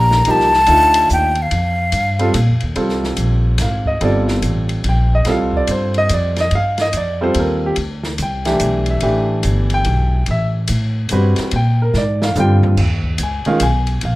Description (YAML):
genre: modal jazz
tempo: 144 BPM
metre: 3/4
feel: swing 64% on 8ths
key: unclear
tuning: A4 = 440 Hz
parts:
  - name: breathy jazz flute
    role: melody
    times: 0.0-2.6 s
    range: F5 to Bb5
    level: -14 LUFS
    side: left 1 dB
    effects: plate reverb
  - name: warm concert grand piano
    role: accompaniment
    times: 0.0-14.2 s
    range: D3 to Ab5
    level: -18 LUFS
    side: right 1 dB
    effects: plate reverb
  - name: upright bass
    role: bass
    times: 0.0-14.2 s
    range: G1 to Bb2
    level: -17 LUFS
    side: equal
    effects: none
  - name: open jazz drum kit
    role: drums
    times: 0.1-14.1 s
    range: crash cymbal, hi-hat, kick drum, ride cymbal, snare drum, toms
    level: -25 LUFS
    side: left 1 dB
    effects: none
room: light reverb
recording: rough home demo mix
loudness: -14 LUFS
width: side -18 dB against mid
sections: 0.0-2.8 A section; 2.8-12.8 B section; 12.8-14.2 B section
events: drum fill 11.9-12.8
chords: 0.0 F9sus4; 2.8 C7sus4; 7.8 D9sus4; 11.5 Bb13; 12.8 Eb9sus4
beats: | 0.26 0.68 1.09 | 1.51 1.93 2.34 | 2.76 3.18 3.60 | 4.01 4.43 4.85 | 5.27 5.69 6.10 | 6.52 6.94 7.36 | 7.77 8.19 8.61 | 9.03 9.44 9.86 | 10.28 10.69 11.11 | 11.53 11.94 12.36 | 12.78 13.19 13.61 | 14.03